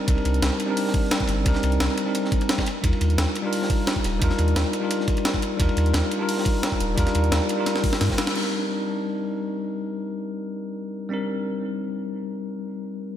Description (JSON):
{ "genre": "liquid drum and bass", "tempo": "174 BPM", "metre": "4/4", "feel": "straight", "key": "C minor", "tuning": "A4 = 444 Hz", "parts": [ { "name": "bell-like tine electric piano", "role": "accompaniment", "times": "0.0-13.2 s", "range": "G3 to Bb4", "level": "-25 LUFS", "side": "left 1 dB", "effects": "fast stereo tremolo, analog delay" }, { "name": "warm sub bass", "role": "bass", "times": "0.1-8.1 s", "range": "Eb1 to G2", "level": "-23 LUFS", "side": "equal", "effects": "none" }, { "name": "breakbeat sampler-style drum kit", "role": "drums", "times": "0.1-8.4 s", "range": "crash cymbal, hi-hat, snare drum", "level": "-28 LUFS", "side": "right 1 dB", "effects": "none" }, { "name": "crunchy breakbeat drum kit", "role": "drums", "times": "0.1-8.3 s", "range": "hi-hat, ride cymbal, snare drum", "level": "-33 LUFS", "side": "equal", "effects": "high-pass filter on cymbals, high-pass filter on hats, high-pass filter on snare, high-pass filter on room" }, { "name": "electronic kick drum", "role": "drums", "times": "0.1-8.2 s", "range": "none", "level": "-24 LUFS", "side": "equal", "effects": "overdrive" } ], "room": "moderate lush hall reverb, RT60 2.1 s", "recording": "dreamy mix soaked in reverb", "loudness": "-22 LUFS", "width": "side -10 dB against mid", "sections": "0.0-8.4 A section; 8.4-13.2 B section", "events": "drum fill 7.7-8.4; band accent 8.3", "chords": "0.0 Cm9; 2.7 Ebmaj9; 8.4 Cm9" }